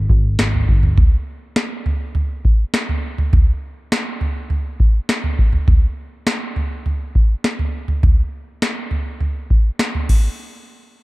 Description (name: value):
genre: dream pop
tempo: 102 BPM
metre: 4/4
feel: straight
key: unclear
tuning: A4 = 439 Hz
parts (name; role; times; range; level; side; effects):
- vintage muted picked electric bass; bass; 0.0-0.9 s; G1 to Ab1; -17 LUFS; equal; none
- booming analog drum machine; drums; 0.1-10.3 s; crash cymbal, kick drum, snare drum, toms; -16 LUFS; equal; none
room: light reverb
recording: none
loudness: -16 LUFS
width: side -20 dB against mid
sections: 0.0-10.4 A section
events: none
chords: none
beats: 0.39 | 0.97 1.56 2.15 2.74 | 3.33 3.92 4.50 5.09 | 5.68 6.27 6.86 7.45 | 8.03 8.62 9.21 9.80